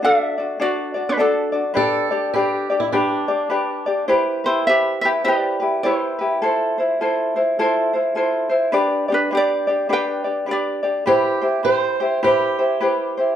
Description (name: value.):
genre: Hawaiian.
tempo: 103 BPM.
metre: 4/4.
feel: swing 62% on 8ths.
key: G major, C major from 4.1 s.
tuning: A4 = 440 Hz.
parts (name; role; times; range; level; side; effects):
ukulele; melody; 0.0-10.9 s; D4 to G5; -20 LUFS; right 1 dB; none.
ukulele; accompaniment; 0.0-13.4 s; D4 to D5; -19 LUFS; left 1 dB; none.
fingerpicked swing-style acoustic guitar; second line; 1.8-4.1, 11.1-13.4 s; D4 to C5; -24 LUFS; right 4 dB; none.
room: moderate large studio reverb, RT60 0.8 s.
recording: band playing live in one room.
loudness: -17 LUFS.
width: side -10 dB against mid.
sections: 0.0-4.1 A section; 4.1-13.4 B section.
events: none.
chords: 0.0 D; 1.8 G; 4.1 Cmaj7; 6.4 Fmaj7; 8.7 G; 11.1 Cmaj7.